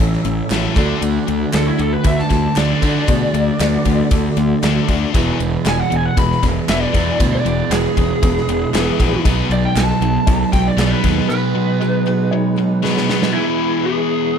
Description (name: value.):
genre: classic rock.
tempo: 117 BPM.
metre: 4/4.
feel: straight.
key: unclear.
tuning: A4 = 441 Hz.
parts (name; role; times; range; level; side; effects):
picked steel-string acoustic guitar; accompaniment; 0.0-13.4 s; E2 to G#4; -32 LUFS; right 11 dB; none.
warm concert grand piano; accompaniment; 0.0-13.3 s; G#3 to A5; -30 LUFS; left 3 dB; none.
tonewheel organ; sustained chords; 0.0-14.4 s; G#3 to E5; -29 LUFS; equal; slow rotary speaker, chorus vibrato.
biting overdriven guitar; riff; 0.0-14.4 s; E2 to D4; -21 LUFS; left 13 dB; none.
overdriven semi-hollow guitar; riff; 0.0-13.3 s; E2 to D4; -21 LUFS; right 10 dB; spring reverb.
fuzz fingered electric bass; bass; 0.0-11.2 s; E1 to D3; -21 LUFS; equal; overdrive.
gated 80s drum kit; drums; 0.1-13.3 s; kick drum, ride cymbal, snare drum; -19 LUFS; equal; none.
group handclap; percussion; 0.5-10.9 s; none; -31 LUFS; right 6 dB; none.
lead guitar through a small cranked amp; melody; 1.6-14.4 s; E4 to B5; -21 LUFS; right 1 dB; overdrive, slapback echo.
room: little or no reverb.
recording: none.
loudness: -14 LUFS.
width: side -7 dB against mid.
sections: 0.0-13.4 A section; 13.4-14.4 B section.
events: lead electric guitar solo 0.0-13.4; grand piano fill 4.4-5.1, 12.6-13.4; drum fill 12.8-13.4.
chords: 0.0 A; 0.8 D; 5.1 E; 9.3 B6; 13.4 E.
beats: 0.00 0.51 | 1.03 1.54 2.06 2.57 | 3.09 3.60 4.12 4.63 | 5.15 5.66 6.17 6.69 | 7.20 7.71 8.23 8.74 | 9.26 9.77 10.28 10.79 | 11.30 11.82 12.33 12.84 | 13.35 13.86 14.37.